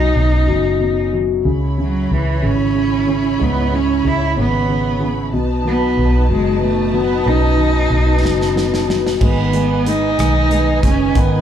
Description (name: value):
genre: six-eight pop ballad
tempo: 62 BPM (dotted quarters)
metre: 6/8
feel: straight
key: C# minor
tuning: A4 = 440 Hz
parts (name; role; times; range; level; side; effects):
- rich cello; melody; 0.0-11.4 s; E3 to E4; -18 LUFS; right 2 dB; slapback echo
- warm baby grand piano; accompaniment; 0.0-11.4 s; F#2 to G#3; -20 LUFS; left 4 dB; slapback echo
- vintage muted fingered electric bass; bass; 0.0-11.4 s; F#1 to C#2; -18 LUFS; equal; none
- warm symphonic string section; sustained chords; 1.5-11.4 s; D#4 to B5; -24 LUFS; right 1 dB; none
- modern studio drum kit; drums; 8.3-11.3 s; crash cymbal, hi-hat, kick drum, rim click, snare drum; -21 LUFS; right 1 dB; none
- fingerpicked plugged-in steel-string acoustic guitar; arpeggios; 9.2-11.4 s; D#3 to D#4; -26 LUFS; left 5 dB; none
room: light reverb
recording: live gig heard through the venue's PA, club reverb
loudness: -14 LUFS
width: side -9 dB against mid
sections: 0.0-9.2 A section; 9.2-11.4 B section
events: drum fill 8.2-9.2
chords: 0.0 B; 1.5 C#m7; 5.3 B7; 9.2 G#m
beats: 0.48 | 1.46 2.43 | 3.40 4.37 | 5.33 6.29 | 7.26 8.23 | 9.21 10.19 | 11.15